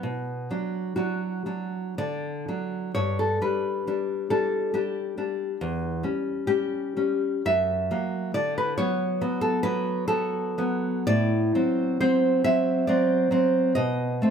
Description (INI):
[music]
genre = romantic piece for solo classical guitar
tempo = 57-70 BPM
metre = 3/4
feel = rubato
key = B minor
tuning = A4 = 440 Hz
[part]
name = nylon-string guitar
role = solo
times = 0.0-14.3 s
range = E2 to E5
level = -23 LUFS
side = equal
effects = none
[sound]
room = light reverb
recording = close, detailed microphones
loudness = -23 LUFS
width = side -7 dB against mid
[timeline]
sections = 0.0-14.3 A section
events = none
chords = 0.0 Bm; 2.0 D; 2.9 G; 5.6 C#dim/E; 7.4 F#; 8.3 Bm/D; 11.1 F#dim/A; 13.8 B7b9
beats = | 0.03 0.97 1.98 | 2.94 3.85 4.72 | 5.59 6.47 7.45 | 8.35 9.21 10.09 | 11.08 12.01 12.88 | 13.76